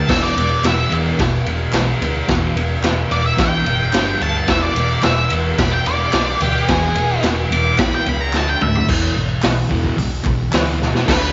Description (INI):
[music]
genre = garage rock duo or trio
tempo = 109 BPM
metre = 4/4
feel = straight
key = unclear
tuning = A4 = 436 Hz
[part]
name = octave-fuzz lead guitar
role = melody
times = 0.0-11.3 s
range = G4 to D6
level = -23 LUFS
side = equal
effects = distortion
[part]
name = thick fuzz guitar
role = riff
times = 0.0-11.3 s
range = E2 to D4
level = -23 LUFS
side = equal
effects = distortion
[part]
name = picked electric bass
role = bass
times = 0.1-11.3 s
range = E1 to E2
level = -26 LUFS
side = equal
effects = overdrive
[part]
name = raw garage drum kit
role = drums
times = 0.1-11.2 s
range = crash cymbal, hi-hat, kick drum, ride cymbal, snare drum, toms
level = -21 LUFS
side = equal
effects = none
[part]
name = group handclap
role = percussion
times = 0.6-10.7 s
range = none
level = -34 LUFS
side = equal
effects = none
[sound]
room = light reverb, small room ambience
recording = nothing above 7.6 kHz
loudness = -17 LUFS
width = mono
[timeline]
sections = 0.0-8.9 A section; 8.9-11.1 B section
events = lead electric guitar solo 0.0-8.9; drum fill 8.3-8.9, 10.8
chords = 0.1 E5; 3.9 G5; 4.5 E5; 8.3 D5; 8.9 E5